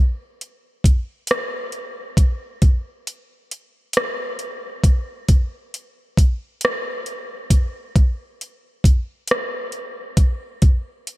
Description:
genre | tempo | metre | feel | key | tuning
R&B | 45 BPM (dotted quarters) | 6/8 | straight | none | none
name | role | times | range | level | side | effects
smooth R&B drum kit | drums | 0.4-11.2 s | hi-hat, kick drum, rim click | -17 LUFS | equal | none
room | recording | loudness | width
light reverb | none | -18 LUFS | side -18 dB against mid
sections
0.0-11.2 A section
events
none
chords
none

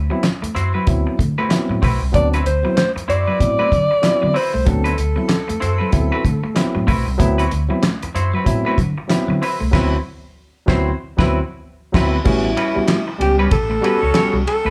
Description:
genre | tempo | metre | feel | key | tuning
funk | 95 BPM | 4/4 | swing 60% on 16ths | unclear | A4 = 440 Hz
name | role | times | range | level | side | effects
vintage muted fingered electric bass | bass | 0.0-14.7 s | A1 to D3 | -24 LUFS | equal | none
semi-hollow electric guitar | accompaniment | 0.1-14.7 s | G3 to C#5 | -27 LUFS | equal | vibrato effect
clean electric guitar | riff | 0.1-14.7 s | F#3 to A3 | -28 LUFS | equal | none
tine electric piano | stabs | 0.1-14.7 s | F#3 to G4 | -25 LUFS | equal | none
cloth-damped thuddy drum kit | drums | 0.2-14.6 s | crash cymbal, handclaps, hi-hat, kick drum, ride cymbal, snare drum | -22 LUFS | equal | none
breathy alto saxophone | melody | 2.1-6.9, 12.3-14.7 s | E4 to D5 | -22 LUFS | equal | none
room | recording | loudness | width
light reverb | band playing live in one room | -18 LUFS | mono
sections
0.0-12.3 A section; 12.3-14.7 B section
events
band accent 9.7-12.3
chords
0.0 D13; 12.3 A13

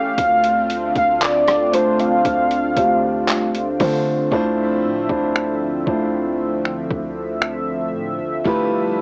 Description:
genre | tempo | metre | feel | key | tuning
contemporary R&B | 58 BPM | 4/4 | straight | D minor | A4 = 440 Hz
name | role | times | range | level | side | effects
warm velvety synth lead | melody | 0.0-3.8 s | C5 to F5 | -20 LUFS | equal | chorus, cassette tape, analog delay
dark concert grand piano | accompaniment | 0.0-9.0 s | A3 to E5 | -23 LUFS | equal | cassette tape
warm analog pad | sustained chords | 0.0-9.0 s | D3 to E5 | -27 LUFS | equal | chorus, sidechain pumping, cassette tape
warm 808-style bass | bass | 0.0-9.0 s | G1 to D3 | -33 LUFS | equal | none
dusty soul sampler-style drum kit | drums | 0.2-8.7 s | finger snaps, handclaps, hi-hat, kick drum, rim click | -26 LUFS | equal | none
room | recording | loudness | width
light reverb | home recording on cassette, small speaker sound | -19 LUFS | mono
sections
0.0-4.3 A section; 4.3-9.0 B section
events
break 4.3-9.0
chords
0.2 Dm7; 4.3 Dm9; 8.5 G13

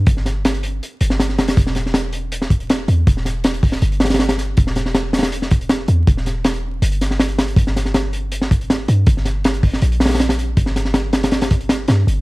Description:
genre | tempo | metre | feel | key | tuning
drum and bass, jungle | 160 BPM | 4/4 | straight | E minor | A4 = 438 Hz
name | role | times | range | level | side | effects
warm 808-style bass | bass | 0.0-12.2 s | E1 to G2 | -19 LUFS | equal | none
crunchy breakbeat drum kit | drums | 0.1-12.2 s | hi-hat, kick drum, snare drum | -17 LUFS | equal | none
room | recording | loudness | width
little or no reverb | vinyl crackle | -15 LUFS | side -21 dB against mid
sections
0.0-1.6 A section; 1.6-12.2 A section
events
drop 0.0-1.6, 1.6-12.2; kick drops out 0.8-1.6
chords
none

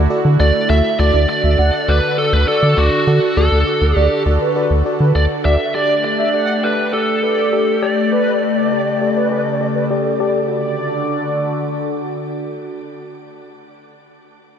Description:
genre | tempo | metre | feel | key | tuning
synth-pop | 101 BPM | 4/4 | straight | D major | A4 = 440 Hz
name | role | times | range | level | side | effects
phased analog pad | sustained chords | 0.0-13.6 s | C#3 to A4 | -21 LUFS | left 1 dB | phaser, chorus, low-pass filter, shimmer reverb
rubbery square bass | bass | 0.0-5.6 s | D2 to D3 | -14 LUFS | equal | none
FM electric piano with auto-pan | accompaniment | 0.1-13.7 s | F#4 to E5 | -22 LUFS | left 2 dB | low-pass filter, shimmer reverb
biting lead guitar | melody | 0.4-9.9 s | F#4 to E5 | -19 LUFS | right 1 dB | overdrive, low-pass filter, shimmer reverb, analog delay
mellow synth brass | second line | 1.0-12.2 s | A4 to F#5 | -23 LUFS | right 2 dB | chorus, shimmer reverb, analog delay
room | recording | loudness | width
wet lush hall reverb, RT60 2.1 s | dreamy mix soaked in reverb | -14 LUFS | side -8 dB against mid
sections
1.0-10.5 A section; 10.5-12.9 B section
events
filter sweep 1.0-10.5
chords
0.0 Dadd9; 1.0 D; 5.7 Gsus2; 10.5 D

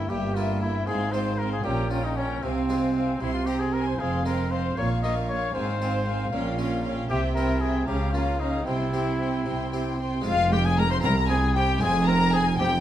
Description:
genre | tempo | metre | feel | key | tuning
classical, baroque-style concerto movement with solo episodes | 77 BPM (dotted quarters) | 6/8 | straight | F minor | A4 = 440 Hz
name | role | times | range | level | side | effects
clear trumpet | melody | 0.0-12.7 s | C4 to Eb5 | -30 LUFS | left 2 dB | none
rich chamber violin section | melody | 0.0-12.8 s | F5 to Db6 | -34 LUFS | left 4 dB | none
rich chamber violin section | second line | 0.0-12.8 s | E5 to C6 | -32 LUFS | left 3 dB | none
harpsichord | accompaniment | 0.0-12.8 s | C2 to G4 | -34 LUFS | right 1 dB | none
rich chamber viola section | accompaniment | 0.0-12.7 s | Ab3 to Db4 | -33 LUFS | right 2 dB | none
warm chamber cello section | bass | 0.1-12.8 s | C2 to Db3 | -28 LUFS | right 2 dB | none
warm studio double bass section | bass | 0.1-12.8 s | F1 to Db2 | -29 LUFS | right 1 dB | none
room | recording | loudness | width
moderate recital hall reverb, RT60 1.4 s | dark, warm production | -22 LUFS | side -11 dB against mid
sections
0.0-10.3 A section; 10.3-12.8 B section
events
none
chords
0.0 Edim/G; 0.9 Fm/Ab; 1.6 Gdim/Bb; 2.4 Fm/C; 3.2 C5; 4.0 Fm; 4.8 Bbm; 5.6 Fm/Ab; 6.3 Gm7b5/Bb; 7.1 C; 7.9 Bbm/Db; 8.7 C; 10.3 Fm; 11.0 C; 11.8 Fm

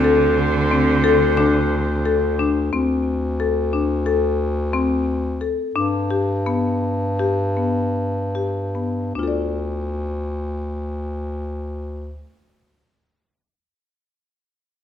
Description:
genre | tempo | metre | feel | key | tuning
contemporary instrumental, chamber music in an uneven meter | 144-182 BPM (eighths) | 9/8 | straight | D dorian | A4 = 440 Hz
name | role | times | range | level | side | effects
rich cello | second line | 0.0-2.4 s | D3 | -22 LUFS | right 6 dB | none
clear woodwind section | sustained chords | 0.0-2.7 s | D3 to C5 | -25 LUFS | equal | none
marimba with medium hard mallets | arpeggios | 0.0-12.4 s | B3 to D5 | -21 LUFS | left 4 dB | none
clear bass clarinet | bass | 0.0-12.3 s | D2 to G2 | -23 LUFS | equal | none
frame drum | percussion | 0.0-2.6 s | none | barely audible | none | none
room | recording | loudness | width
moderate recital hall reverb, RT60 1.3 s | none | -18 LUFS | side -9 dB against mid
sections
0.0-2.7 A section; 2.7-9.2 B section; 9.2-12.9 C section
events
slowing down 3.4-9.2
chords
0.0 D5; 5.8 G; 9.2 Dm

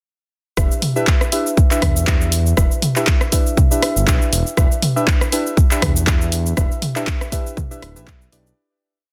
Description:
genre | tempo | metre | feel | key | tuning
afro house | 120 BPM | 4/4 | swing 55% on 16ths | E minor | A4 = 444 Hz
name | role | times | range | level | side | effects
deep mellow chord stab | stabs | 0.6-8.5 s | D4 to E5 | -26 LUFS | equal | chorus, sidechain pumping, delay
smooth synth bass | bass | 0.6-8.5 s | D1 to E2 | -22 LUFS | equal | sidechain pumping
electronic kick drum | drums | 0.6-8.2 s | none | -18 LUFS | equal | none
house drum kit | drums | 0.6-8.6 s | handclaps, hi-hat, rim click, shaker, toms | -23 LUFS | equal | soft clipping on snare
room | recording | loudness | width
digital ambience | dense, heavily limited modern master | -17 LUFS | mono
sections
0.6-8.6 drop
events
drop 0.6-8.6; fade-out 5.9-8.6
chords
0.6 Em7

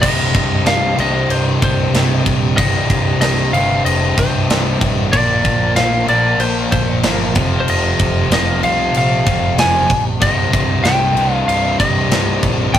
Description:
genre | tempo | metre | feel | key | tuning
hard rock | 94 BPM | 4/4 | straight | C minor | A4 = 441 Hz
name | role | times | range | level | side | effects
lightly driven lead guitar | melody | 0.0-12.8 s | C5 to Ab5 | -18 LUFS | left 1 dB | none
mellow tonewheel organ | sustained chords | 0.0-12.8 s | F3 to Eb5 | -30 LUFS | right 1 dB | none
high-gain distorted guitar | riff | 0.0-12.8 s | C2 to Bb3 | -20 LUFS | right 3 dB | distortion
tight distorted guitar | riff | 0.0-12.8 s | C2 to Bb3 | -20 LUFS | left 4 dB | distortion
picked electric bass | bass | 0.0-12.8 s | C1 to C2 | -22 LUFS | equal | none
tight metal drum kit | drums | 0.0-12.8 s | crash cymbal, kick drum, snare drum | -18 LUFS | equal | none
room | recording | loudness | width
moderate booth ambience, RT60 0.2 s | rough rehearsal-room recording | -13 LUFS | side -10 dB against mid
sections
0.0-12.8 A section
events
none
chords
0.0 Cm; 5.1 Bb; 7.4 F5; 10.2 Cm

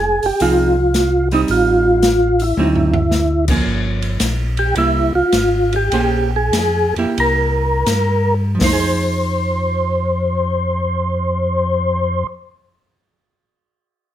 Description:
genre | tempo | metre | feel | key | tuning
soul jazz organ trio | 77-111 BPM | 4/4 | swing 68% on 8ths | F minor | A4 = 445 Hz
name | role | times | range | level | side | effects
percussive tonewheel organ | melody | 0.0-12.3 s | Eb4 to C5 | -17 LUFS | equal | slow rotary speaker, chorus vibrato
mellow tonewheel organ | bass | 0.0-12.2 s | F1 to G2 | -20 LUFS | equal | slow rotary speaker
open jazz drum kit | drums | 0.2-8.9 s | crash cymbal, hi-hat, kick drum, ride cymbal, snare drum, toms | -22 LUFS | left 1 dB | none
archtop guitar, miked and amplified | accompaniment | 0.4-12.5 s | D3 to C5 | -21 LUFS | right 4 dB | none
room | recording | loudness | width
moderate club reverb, RT60 0.8 s | none | -14 LUFS | side -11 dB against mid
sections
0.0-3.7 A section; 3.7-8.6 B section; 8.6-14.1 C section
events
drum fill 2.6-3.1; slowing down 3.7-8.6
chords
0.0 Fm7; 1.5 Am7b5; 2.6 D7b9; 3.7 Gm7b5; 4.8 C7; 5.9 Bbm9; 7.2 C7; 8.6 Fm7

